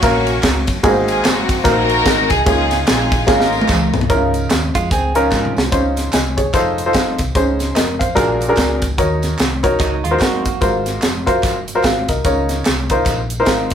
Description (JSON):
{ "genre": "uptempo gospel", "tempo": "147 BPM", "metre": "4/4", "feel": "swing 60% on 8ths", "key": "Db major", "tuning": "A4 = 440 Hz", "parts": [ { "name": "rich studio string section", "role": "melody", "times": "0.0-4.1 s", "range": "Bb3 to Bb4", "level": "-18 LUFS", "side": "left 1 dB", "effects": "none" }, { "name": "warm upright piano", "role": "accompaniment", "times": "0.0-13.7 s", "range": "Ab2 to Ab5", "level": "-17 LUFS", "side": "equal", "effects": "none" }, { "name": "hollow-body short-scale fingered electric bass", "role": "bass", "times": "0.0-13.7 s", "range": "F1 to Ab2", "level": "-23 LUFS", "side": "equal", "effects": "none" }, { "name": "crisp fusion drum kit", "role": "drums", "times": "0.0-13.7 s", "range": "hi-hat, kick drum, ride cymbal, snare drum, toms", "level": "-18 LUFS", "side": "equal", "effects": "none" }, { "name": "handclaps and tambourine", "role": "percussion", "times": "0.0-13.7 s", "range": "none", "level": "-27 LUFS", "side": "right 2 dB", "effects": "none" }, { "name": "direct-recorded clean electric guitar", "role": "second line", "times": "4.8-5.7, 9.8-10.6 s", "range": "F3 to Ab4", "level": "-21 LUFS", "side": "right 5 dB", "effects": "none" } ], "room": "moderate studio reverb, RT60 0.6 s", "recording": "rough rehearsal-room recording", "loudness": "-13 LUFS", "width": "side -8 dB against mid", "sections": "0.0-4.1 A section; 4.1-5.7 B section; 5.7-13.7 C section", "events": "drum fill 3.3-4.1, 5.3-5.7", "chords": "0.0 Gbmaj7; 0.8 Ab9; 2.5 Db69; 5.7 Dbmaj9; 6.5 F7; 7.4 Bbm11; 8.2 Bb7alt; 9.0 Ebm7; 10.6 Ab13; 12.2 Db69", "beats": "0.03 0.43 | 0.84 1.25 1.66 2.06 | 2.47 2.87 3.28 3.69 | 4.09 4.50 4.91 5.32 | 5.72 6.13 6.54 6.95 | 7.36 7.76 8.17 8.58 | 8.99 9.39 9.80 10.21 | 10.62 11.02 11.43 11.84 | 12.25 12.65 13.06 13.47" }